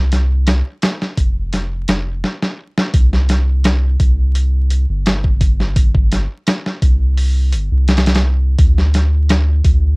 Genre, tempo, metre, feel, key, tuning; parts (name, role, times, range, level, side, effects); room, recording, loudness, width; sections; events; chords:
trip hop; 85 BPM; 4/4; straight; A4 = 440 Hz
soft dub sub bass; bass; 0.0-10.0 s; F1 to D2; -14 LUFS; equal; tube saturation
boom bap sampler-style drum kit; drums; 0.1-9.8 s; hi-hat, kick drum, snare drum; -15 LUFS; equal; cassette tape
little or no reverb; home recording on cassette, vinyl crackle; -13 LUFS; side -35 dB against mid
0.0-2.9 A section; 2.9-10.0 B section
drum fill 2.2-2.9